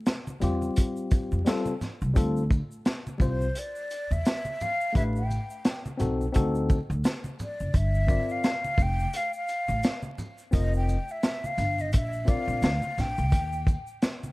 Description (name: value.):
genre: hip hop, jazz-hop.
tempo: 86 BPM.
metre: 4/4.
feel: swing 57% on 16ths.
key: D minor.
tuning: A4 = 437 Hz.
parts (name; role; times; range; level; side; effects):
crunchy breakbeat drum kit; drums; 0.1-14.2 s; hi-hat, kick drum, shaker, snare drum; -25 LUFS; equal; none.
egg shaker and congas; percussion; 0.1-14.3 s; none; -39 LUFS; right 1 dB; none.
mellow tine electric piano; accompaniment; 0.4-12.7 s; G3 to Eb5; -30 LUFS; left 3 dB; overdrive.
upright bass; bass; 0.4-13.7 s; F1 to F2; -28 LUFS; equal; none.
breathy mellow concert flute; melody; 3.2-13.7 s; C5 to G5; -31 LUFS; left 1 dB; tape echo.
room: small room ambience.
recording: dark, warm production, vinyl crackle.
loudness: -25 LUFS.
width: side -21 dB against mid.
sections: 0.0-2.2 A section; 2.2-14.3 B section.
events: flute solo 2.2-14.3.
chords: 0.0 Dm7 (rootless); 5.0 Am9; 6.3 D7b9; 7.7 Gm11; 10.5 Fsus2; 11.9 Bb; 13.3 N.C..